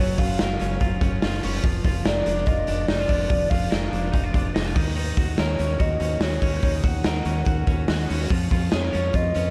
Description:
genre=jangly indie pop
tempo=144 BPM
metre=4/4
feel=straight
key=unclear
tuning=A4 = 439 Hz
part: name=hollow clarinet-like synth lead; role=melody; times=0.0-9.5 s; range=C#5 to F#5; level=-31 LUFS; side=equal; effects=chorus, tape echo
part: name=twelve-string electric guitar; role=arpeggios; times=0.0-9.5 s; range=D#3 to A#4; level=-32 LUFS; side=equal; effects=tape echo
part: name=deep dub fingered electric bass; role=bass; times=0.0-9.5 s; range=E#1 to E#2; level=-28 LUFS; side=equal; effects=none
part: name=raw garage drum kit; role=drums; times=0.2-9.4 s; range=hi-hat, kick drum, snare drum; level=-26 LUFS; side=equal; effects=none
room=studio reverb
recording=echo-heavy mix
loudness=-23 LUFS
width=mono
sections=0.0-9.5 A section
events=none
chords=0.0 F#maj7; 1.6 A#/E#; 4.8 D#m7; 8.3 A#m/E#

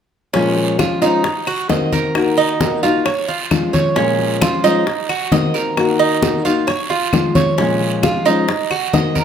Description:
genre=latin, Cuban son and guajira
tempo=133 BPM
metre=4/4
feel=straight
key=Bb minor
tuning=A4 = 440 Hz
part: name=nylon-string guitar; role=accompaniment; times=0.3-9.2 s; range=Bb2 to Gb4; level=-18 LUFS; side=left 4 dB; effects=none
part: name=Cuban tres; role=arpeggios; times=0.3-9.2 s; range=Db4 to Eb5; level=-18 LUFS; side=right 6 dB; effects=none
part: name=bongos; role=percussion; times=0.3-9.2 s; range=none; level=-24 LUFS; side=left 5 dB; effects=none
part: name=congas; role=percussion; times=0.3-9.2 s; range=none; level=-20 LUFS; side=left 2 dB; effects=none
part: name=guiro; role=percussion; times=0.3-9.2 s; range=none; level=-28 LUFS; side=right 7 dB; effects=none
part: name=claves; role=percussion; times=0.8-8.9 s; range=none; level=-29 LUFS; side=left 4 dB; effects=none
room=moderate large studio reverb, RT60 1.1 s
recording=none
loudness=-14 LUFS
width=side -8 dB against mid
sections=0.3-9.2 A section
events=none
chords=0.3 Bbm7; 1.2 Cm7b5; 2.2 Ebm; 3.1 Bbm7; 4.9 Cm7b5; 5.8 Ebm; 6.7 Bbm7; 8.5 Cm7b5

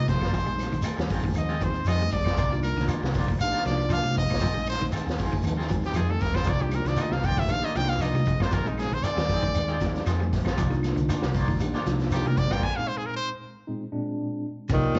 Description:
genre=afrobeat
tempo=117 BPM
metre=4/4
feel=straight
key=unclear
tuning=A4 = 442 Hz
part: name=brilliant trumpet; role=melody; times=0.0-13.3 s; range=Eb4 to Ab5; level=-32 LUFS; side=equal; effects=none
part: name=mellow tine electric piano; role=accompaniment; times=0.0-14.4 s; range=Bb2 to G4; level=-36 LUFS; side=equal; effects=none
part: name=clean electric guitar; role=arpeggios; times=0.0-15.0 s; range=C3 to G3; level=-37 LUFS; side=equal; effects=none
part: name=hollow-body short-scale fingered electric bass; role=bass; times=0.0-15.0 s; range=Bb1 to C3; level=-31 LUFS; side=equal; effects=none
part: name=electric guitar at the edge of break-up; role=stabs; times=0.1-12.6 s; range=Eb3 to F4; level=-38 LUFS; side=equal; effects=tremolo
part: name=vintage drum kit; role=drums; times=0.1-15.0 s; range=crash cymbal, hi-hat, kick drum, ride cymbal, snare drum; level=-32 LUFS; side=equal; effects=none
part: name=congas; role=percussion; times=0.1-15.0 s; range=none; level=-38 LUFS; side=equal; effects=none
part: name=shekere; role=percussion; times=0.1-15.0 s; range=none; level=-39 LUFS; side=equal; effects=none
part: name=claves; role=percussion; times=0.2-15.0 s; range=none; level=-51 LUFS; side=equal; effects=none
part: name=breathy tenor saxophone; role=melody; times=14.7-15.0 s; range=Eb3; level=-28 LUFS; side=equal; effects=none
part: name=warm bass trombone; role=second line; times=14.7-15.0 s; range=Eb2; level=-37 LUFS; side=equal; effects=none
part: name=warm trombone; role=second line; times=14.7-15.0 s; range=Bb2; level=-34 LUFS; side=equal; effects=none
room=moderate large studio reverb, RT60 1.3 s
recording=band playing live in one room, cassette tape, nothing above 7.8 kHz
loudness=-26 LUFS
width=mono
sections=0.0-14.7 A section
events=trumpet solo 0.0-14.7; stop 12.6-14.7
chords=0.3 Bb9sus4; 2.4 Cm11; 4.4 Bb9sus4; 6.5 Cm11; 8.5 Bb9sus4; 10.6 Cm11; 12.6 Bb9sus4

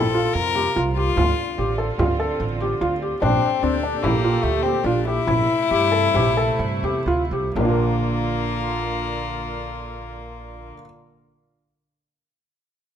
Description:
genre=contemporary instrumental, chamber music in an uneven meter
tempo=119-147 BPM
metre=5/4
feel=straight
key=Bb lydian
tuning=A4 = 440 Hz
part: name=rich violin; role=melody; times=0.0-10.7 s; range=A3 to Bb4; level=-24 LUFS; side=left 6 dB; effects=none
part: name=rich studio string section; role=sustained chords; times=0.0-10.7 s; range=Bb2 to A4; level=-29 LUFS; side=right 3 dB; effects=none
part: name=felt-muted upright piano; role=arpeggios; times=0.0-10.8 s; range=Bb3 to Bb4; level=-24 LUFS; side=equal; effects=none
part: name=upright bass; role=bass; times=0.0-10.7 s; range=A1 to G2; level=-25 LUFS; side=right 3 dB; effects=none
part: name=frame drum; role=percussion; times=0.6-7.8 s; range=none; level=-29 LUFS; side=left 1 dB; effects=none
room=moderate recital hall reverb, RT60 1.5 s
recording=close, detailed microphones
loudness=-19 LUFS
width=side -9 dB against mid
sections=0.0-7.6 A section; 7.6-12.6 B section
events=slowing down 4.0-7.6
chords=0.0 Bbsus2; 1.2 Dm7; 3.2 Gmadd9/Bb; 7.6 Bb

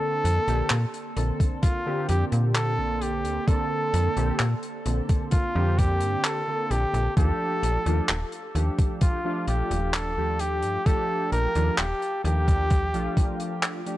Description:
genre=vaporwave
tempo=65 BPM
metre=4/4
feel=straight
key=Bb major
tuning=A4 = 440 Hz
part: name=clear flugelhorn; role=melody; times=0.0-13.6 s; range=F4 to Bb4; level=-28 LUFS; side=equal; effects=vintage 12-bit sampler grit, tape echo
part: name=warbly lo-fi synth keys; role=accompaniment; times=0.0-14.0 s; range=D3 to A4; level=-31 LUFS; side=equal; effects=analog chorus
part: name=warbly tape-like pad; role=sustained chords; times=0.0-14.0 s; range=Bb3 to D6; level=-39 LUFS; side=right 3 dB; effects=none
part: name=slap-like FM bass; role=bass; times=0.2-13.1 s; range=Eb1 to Bb2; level=-25 LUFS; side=equal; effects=none
part: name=damped 70s drum kit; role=drums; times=0.2-14.0 s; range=handclaps, hi-hat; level=-30 LUFS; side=equal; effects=none
part: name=electronic kick drum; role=drums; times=1.4-13.4 s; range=none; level=-22 LUFS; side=equal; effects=overdrive
room=studio ambience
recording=dry, gritty hardware recording, cassette tape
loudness=-22 LUFS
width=side -15 dB against mid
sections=0.0-14.0 A section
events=none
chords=0.0 Bbmaj9; 7.2 Ebmaj9#11

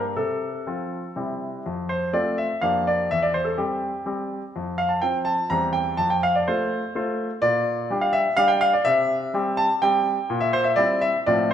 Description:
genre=classical-period piano sonatina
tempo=125 BPM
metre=3/4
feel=straight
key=F major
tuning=A4 = 444 Hz
part: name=clear concert grand piano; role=solo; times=0.0-11.5 s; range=E2 to Bb5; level=-21 LUFS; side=equal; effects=none
room=wet recital hall reverb, RT60 1.6 s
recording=minimal, uncompressed stereo recording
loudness=-21 LUFS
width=side -9 dB against mid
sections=0.0-1.7 A section; 1.7-11.5 B section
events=none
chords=0.2 F/C; 1.2 C; 1.7 F; 2.6 Gm7/F; 3.1 C/E; 4.6 F5; 5.5 C7/E; 6.0 F; 7.4 Gm/Bb; 8.9 C; 10.3 C7/Bb

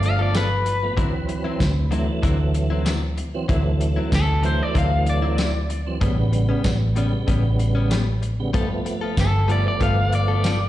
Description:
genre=straight-eighth soul blues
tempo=95 BPM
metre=4/4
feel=straight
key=D mixolydian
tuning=A4 = 440 Hz
part: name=electric guitar at the edge of break-up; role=melody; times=0.0-10.7 s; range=A4 to F5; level=-25 LUFS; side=left 2 dB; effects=plate reverb, slapback echo, analog delay
part: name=tonewheel organ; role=accompaniment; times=0.0-10.5 s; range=C#3 to D4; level=-27 LUFS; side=right 3 dB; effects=slow rotary speaker, overdrive, chorus vibrato, plate reverb, slapback echo
part: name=direct-recorded clean electric guitar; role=stabs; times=0.0-10.6 s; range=A2 to A4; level=-30 LUFS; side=left 6 dB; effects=plate reverb, slapback echo
part: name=vintage muted fingered electric bass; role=bass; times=0.0-10.7 s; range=G1 to D2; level=-21 LUFS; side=equal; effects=none
part: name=warm soul drum kit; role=drums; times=0.0-10.6 s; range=hi-hat, kick drum, snare drum, tambourine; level=-24 LUFS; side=equal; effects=none
room=light reverb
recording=live gig heard through the venue's PA, recital hall reverb, nothing above 10.9 kHz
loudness=-19 LUFS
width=side -14 dB against mid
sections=0.0-10.7 A section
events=none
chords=0.0 G9; 1.0 D9; 6.0 A9; 8.5 G9

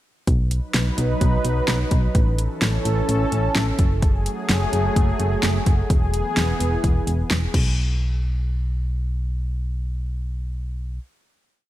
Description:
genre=synth-pop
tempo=128 BPM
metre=4/4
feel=straight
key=B mixolydian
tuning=A4 = 440 Hz
part: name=lush unison pad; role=sustained chords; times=0.7-7.5 s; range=E3 to B4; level=-25 LUFS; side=equal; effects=chorus
part: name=solid FM bass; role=bass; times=0.3-11.0 s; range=E1 to B1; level=-22 LUFS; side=equal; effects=none
part: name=deep house drum kit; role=drums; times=0.3-7.7 s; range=crash cymbal, hi-hat, kick drum, snare drum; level=-21 LUFS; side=equal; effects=none
room=little or no reverb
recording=none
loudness=-19 LUFS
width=side -14 dB against mid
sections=0.3-7.8 verse; 7.8-11.5 final hit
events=none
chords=0.3 B; 2.1 A; 3.8 F#madd9; 5.9 E; 7.5 N.C.

